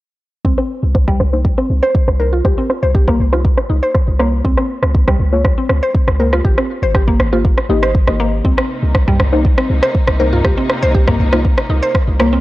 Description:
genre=afro house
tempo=120 BPM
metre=4/4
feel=straight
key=C phrygian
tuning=A4 = 440 Hz
part: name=mallet-like synth pluck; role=arpeggios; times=0.4-12.4 s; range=G3 to C5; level=-19 LUFS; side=equal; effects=chorus, sidechain pumping, tape echo
part: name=warm 808-style bass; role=bass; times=0.4-12.4 s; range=Ab1 to Db2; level=-16 LUFS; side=equal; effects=sidechain pumping
part: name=electronic kick drum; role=drums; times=0.4-12.1 s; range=none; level=-15 LUFS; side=equal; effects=none
part: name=afro-pop drum kit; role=drums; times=0.6-12.3 s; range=rim click, toms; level=-19 LUFS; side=equal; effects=low-pass filter on snare, low-pass filter on toms
part: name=deep mellow chord stab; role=stabs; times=1.3-12.4 s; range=Bb3 to Eb5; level=-20 LUFS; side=left 2 dB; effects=chorus, sidechain pumping, tape echo
part: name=warm symphonic string section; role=sustained chords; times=8.4-12.4 s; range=C3 to Eb4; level=-24 LUFS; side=left 1 dB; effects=sidechain pumping
room=light reverb, digital ambience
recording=dry, gritty hardware recording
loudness=-12 LUFS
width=side -17 dB against mid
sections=0.4-12.4 A section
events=filter sweep on drum 0.4-12.4; filter sweep on 808-style bass 0.4-12.4; filter sweep on synth pluck 0.4-12.4; filter sweep on synth stab 0.4-12.4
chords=0.4 Cm7; 4.4 Db6; 6.4 Abmaj9; 8.4 Cm7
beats=| 0.45 0.95 1.45 1.95 | 2.45 2.95 3.45 3.95 | 4.45 4.95 5.45 5.95 | 6.45 6.95 7.45 7.95 | 8.45 8.95 9.45 9.95 | 10.45 10.95 11.45 11.95

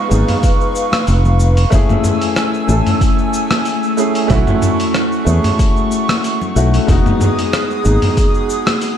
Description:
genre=sunset chillout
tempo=93 BPM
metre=4/4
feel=swing 54% on 16ths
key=F# dorian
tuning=A4 = 440 Hz
part: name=warm concert grand piano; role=accompaniment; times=0.0-9.0 s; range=G#3 to A4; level=-19 LUFS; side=moving between left 6 dB and right 6 dB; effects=auto-pan, ping-pong delay
part: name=airy breathy pad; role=sustained chords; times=0.0-9.0 s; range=A3 to E6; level=-19 LUFS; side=left 1 dB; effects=chorus
part: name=fingered electric bass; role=bass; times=0.1-8.0 s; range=E1 to E2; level=-12 LUFS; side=equal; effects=none
part: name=dusty soul sampler-style drum kit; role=drums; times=0.1-9.0 s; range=cabasa, hi-hat, rim click, toms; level=-19 LUFS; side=equal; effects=none
part: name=congas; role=percussion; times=0.1-8.8 s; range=none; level=-25 LUFS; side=left 3 dB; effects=none
part: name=electronic kick drum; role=drums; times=0.4-8.3 s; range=none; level=-15 LUFS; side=equal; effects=none
room=light reverb, digital ambience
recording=dark, warm production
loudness=-12 LUFS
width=side -9 dB against mid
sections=0.0-9.0 A section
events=none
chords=0.0 C#7; 1.7 F#m9 (rootless); 4.3 B9sus4; 6.9 Emaj7 (rootless)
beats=0.44 1.08 | 1.73 2.37 3.02 3.66 | 4.31 4.95 5.60 6.24 | 6.89 7.53 8.18 8.82

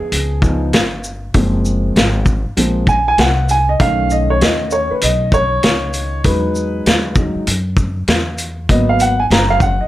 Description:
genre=hip hop, jazz-hop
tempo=98 BPM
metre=4/4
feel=swing 61% on 16ths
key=unclear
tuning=A4 = 440 Hz
part: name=dark upright piano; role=accompaniment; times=0.0-9.9 s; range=D#3 to Bb5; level=-16 LUFS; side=right 1 dB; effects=none
part: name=upright bass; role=bass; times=0.0-9.8 s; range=Gb1 to F#2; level=-19 LUFS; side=equal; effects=none
part: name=vintage drum kit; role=drums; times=0.1-9.8 s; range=hi-hat, kick drum, shaker, snare drum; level=-15 LUFS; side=equal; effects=none
room=light reverb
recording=none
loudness=-13 LUFS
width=side -15 dB against mid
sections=0.0-9.9 A section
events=upright piano solo 0.0-9.9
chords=0.0 Db7; 1.3 Gbmaj9#11; 3.8 B7; 6.2 Emaj9; 8.7 Abm9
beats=0.12 0.74 | 1.35 1.96 2.57 3.19 | 3.80 4.41 5.02 5.63 | 6.25 6.86 7.47 8.08 | 8.70 9.31

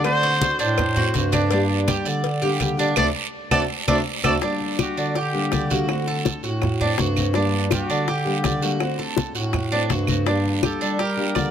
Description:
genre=latin, Cuban son and guajira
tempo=164 BPM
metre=4/4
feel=straight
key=G harmonic minor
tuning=A4 = 441 Hz
part: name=warm trumpet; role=melody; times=0.0-11.5 s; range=F#4 to D5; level=-26 LUFS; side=equal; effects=none
part: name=nylon-string guitar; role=accompaniment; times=0.0-11.5 s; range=D3 to G4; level=-27 LUFS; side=left 3 dB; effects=none
part: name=Cuban tres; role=arpeggios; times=0.0-11.5 s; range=D4 to D5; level=-26 LUFS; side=right 4 dB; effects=none
part: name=mellow bass clarinet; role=bass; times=0.0-11.5 s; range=D2 to G3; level=-24 LUFS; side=right 1 dB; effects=none
part: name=claves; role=percussion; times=0.0-11.5 s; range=none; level=-30 LUFS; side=right 8 dB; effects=none
part: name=congas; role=percussion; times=0.0-11.5 s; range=none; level=-27 LUFS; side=left 2 dB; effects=none
part: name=cowbell and bongos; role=percussion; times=0.0-11.5 s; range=none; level=-29 LUFS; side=left 9 dB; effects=none
part: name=guiro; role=percussion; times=0.0-11.5 s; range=none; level=-32 LUFS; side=right 8 dB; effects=none
room=light reverb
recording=none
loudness=-19 LUFS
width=side -9 dB against mid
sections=0.0-4.4 A section; 4.4-11.5 B section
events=drum fill 3.0-4.4; band accent 3.0-4.4; trumpet solo 4.4-11.5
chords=0.0 D7; 1.5 Gm; 3.0 D7; 4.4 Gm; 5.9 D7; 7.3 Gm; 8.8 D7; 10.3 Gm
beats=| 0.05 0.41 0.78 1.14 | 1.51 1.87 2.24 2.60 | 2.97 3.33 3.70 4.06 | 4.43 4.79 5.16 5.52 | 5.89 6.25 6.62 6.98 | 7.35 7.71 8.08 8.44 | 8.81 9.17 9.54 9.90 | 10.27 10.63 10.99 11.36

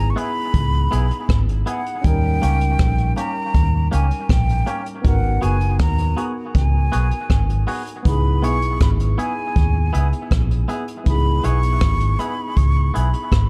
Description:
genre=lovers rock reggae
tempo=80 BPM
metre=4/4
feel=straight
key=C# dorian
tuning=A4 = 439 Hz
part: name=breathy mellow silver concert flute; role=melody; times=0.0-13.5 s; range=F#5 to C#6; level=-28 LUFS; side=equal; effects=tape echo
part: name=barky tine electric piano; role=accompaniment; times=0.0-13.5 s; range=G3 to A#4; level=-32 LUFS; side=equal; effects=overdrive, lush chorus
part: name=vintage muted fingered electric bass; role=bass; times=0.0-13.5 s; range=F#1 to D#2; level=-21 LUFS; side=equal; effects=none
part: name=twangy electric guitar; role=stabs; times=0.2-13.2 s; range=A#3 to G#4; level=-32 LUFS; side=equal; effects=tape echo
part: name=jazz brush drum kit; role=drums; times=0.2-13.5 s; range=hi-hat, kick drum, rim click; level=-22 LUFS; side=equal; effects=none
room=studio ambience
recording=dark, warm production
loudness=-19 LUFS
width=mono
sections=0.0-13.5 A section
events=none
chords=0.0 C#m7; 2.0 D#7; 5.0 G#m7; 8.1 C#m7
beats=0.54 1.29 | 2.04 2.79 3.54 4.29 | 5.05 5.80 6.55 7.30 | 8.05 8.81 9.56 10.31 | 11.06 11.81 12.57 13.32

